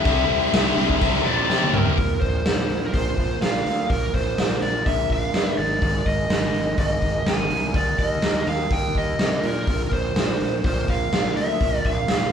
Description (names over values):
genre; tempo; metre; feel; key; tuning
quiet-loud alternative rock; 124 BPM; 4/4; straight; unclear; A4 = 439 Hz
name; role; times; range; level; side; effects
lead guitar through a small cranked amp; melody; 0.0-12.3 s; Bb4 to Ab5; -25 LUFS; left 1 dB; overdrive
phased string machine; sustained chords; 0.0-2.0 s; G4 to C6; -39 LUFS; equal; none
cranked stack guitar; riff; 0.0-2.0 s; C3 to E4; -26 LUFS; right 9 dB; overdrive
distorted electric guitar; riff; 0.0-2.0 s; C3 to G4; -25 LUFS; left 9 dB; overdrive
fuzz fingered electric bass; bass; 0.1-12.3 s; Ab1 to C3; -28 LUFS; equal; overdrive
raw garage drum kit; drums; 0.1-12.2 s; crash cymbal, hi-hat, kick drum, snare drum, toms; -22 LUFS; equal; none
electric guitar through a small old amp; arpeggios; 2.0-12.3 s; Eb3 to Bb4; -30 LUFS; right 5 dB; none
room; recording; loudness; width
light reverb; band playing live in one room; -19 LUFS; side -8 dB against mid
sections
0.0-2.0 A section; 2.0-12.3 B section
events
drum fill 1.5-2.0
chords
0.1 Cadd9; 2.0 Bbsus2; 5.6 Absus2; 7.7 Ebadd9; 9.7 Bbsus2